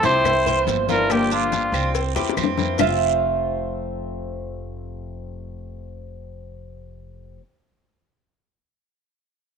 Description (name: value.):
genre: latin, Cuban son and guajira.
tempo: 142 BPM.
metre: 4/4.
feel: straight.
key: F major.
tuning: A4 = 440 Hz.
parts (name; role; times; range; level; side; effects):
breathy trumpet; melody; 0.0-1.9 s; F4 to C5; -20 LUFS; equal; none.
nylon-string guitar; second line; 0.0-1.9 s; Bb3 to E4; -26 LUFS; equal; none.
fingerpicked acoustic archtop guitar; accompaniment; 0.0-7.4 s; F2 to G4; -31 LUFS; left 11 dB; none.
Cuban tres; arpeggios; 0.0-7.4 s; C4 to E5; -24 LUFS; right 8 dB; none.
upright bass; bass; 0.0-7.4 s; F1 to F2; -30 LUFS; equal; none.
congas; percussion; 0.0-2.9 s; none; -30 LUFS; left 9 dB; none.
cowbell and bongos; percussion; 0.0-2.9 s; none; -26 LUFS; left 10 dB; none.
guiro; percussion; 0.0-2.9 s; none; -35 LUFS; right 14 dB; none.
maracas; percussion; 0.0-2.9 s; none; -36 LUFS; left 11 dB; none.
claves; percussion; 0.3-2.9 s; none; -34 LUFS; left 12 dB; none.
room: wet spring reverb, RT60 1.5 s.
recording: 1960s-style stereo with parts hard left and right.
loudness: -19 LUFS.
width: side -6 dB against mid.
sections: 0.0-2.8 A section; 2.8-6.2 B section.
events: drum fill 2.2-2.8.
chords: 0.2 C7; 1.1 Gm7; 1.9 C7; 2.8 Fmaj7.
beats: 0.25 0.67 | 1.10 1.52 1.95 2.37 | 2.79 3.22 3.64 4.07 | 4.49 4.91 5.34 5.76.